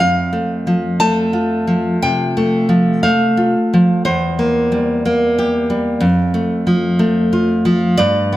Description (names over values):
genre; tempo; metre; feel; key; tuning
romantic piece for solo classical guitar; 60 BPM; 4/4; rubato; unclear; A4 = 445 Hz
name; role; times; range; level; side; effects
nylon-string guitar; solo; 0.0-8.4 s; E2 to A5; -13 LUFS; equal; none
room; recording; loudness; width
moderate recital hall reverb, RT60 1.6 s; none; -13 LUFS; side -15 dB against mid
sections
0.0-8.4 A section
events
none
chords
0.0 F; 4.0 C7/E; 6.0 F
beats
| 0.03 1.01 2.02 3.03 | 4.05 5.04 6.02 7.00 | 8.00